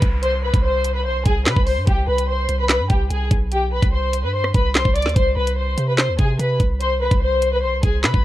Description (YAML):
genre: hip hop, drill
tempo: 146 BPM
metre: 4/4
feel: half-time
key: unclear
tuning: A4 = 440 Hz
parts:
  - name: long sustained 808-style bass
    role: bass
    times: 0.0-8.2 s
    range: B1 to C3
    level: -22 LUFS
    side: equal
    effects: none
  - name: drill drum kit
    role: drums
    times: 0.0-8.2 s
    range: handclaps, hi-hat, kick drum, rim click, snare drum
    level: -18 LUFS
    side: equal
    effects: overdrive
  - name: downlifter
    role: sound effects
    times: 0.0-1.9 s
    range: none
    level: -38 LUFS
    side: equal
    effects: none
  - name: dark studio violin section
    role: melody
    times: 0.2-8.2 s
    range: G4 to D6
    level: -21 LUFS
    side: left 1 dB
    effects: low-pass filter, plate reverb, tape echo
room: light reverb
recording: none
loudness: -16 LUFS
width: side -14 dB against mid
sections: 0.0-8.2 A section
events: none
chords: 0.0 N.C.; 1.9 G; 5.2 N.C.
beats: | 0.23 0.64 1.05 1.46 | 1.87 2.28 2.69 3.11 | 3.52 3.93 4.34 4.75 | 5.16 5.57 5.98 6.39 | 6.80 7.21 7.63 8.04